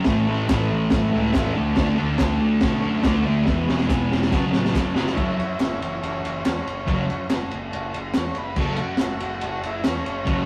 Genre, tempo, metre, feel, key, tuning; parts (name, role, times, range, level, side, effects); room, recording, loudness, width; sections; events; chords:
garage rock duo or trio; 141 BPM; 4/4; straight; F# minor; A4 = 438 Hz
overdriven combo organ; sustained chords; 0.0-10.5 s; E4 to G#5; -38 LUFS; equal
fuzz guitar; riff; 0.0-10.5 s; E2 to D4; -24 LUFS; equal; distortion
fuzz picked electric bass; bass; 0.0-10.4 s; E1 to B2; -32 LUFS; equal; overdrive
crunchy breakbeat drum kit; drums; 0.0-10.4 s; crash cymbal, kick drum, ride cymbal, snare drum; -26 LUFS; equal
group handclap; percussion; 0.5-10.0 s; -42 LUFS; equal
overdriven combo organ; melody; 5.1-10.5 s; E3 to C#5; -32 LUFS; equal
moderate studio reverb, RT60 0.6 s; rough rehearsal-room recording, warm saturation; -22 LUFS; mono
0.0-5.2 A section; 5.2-10.5 B section
drum fill 3.5-5.2; transistor combo organ solo 5.2-10.5
0.1 A; 1.6 D; 3.5 E; 4.3 F#m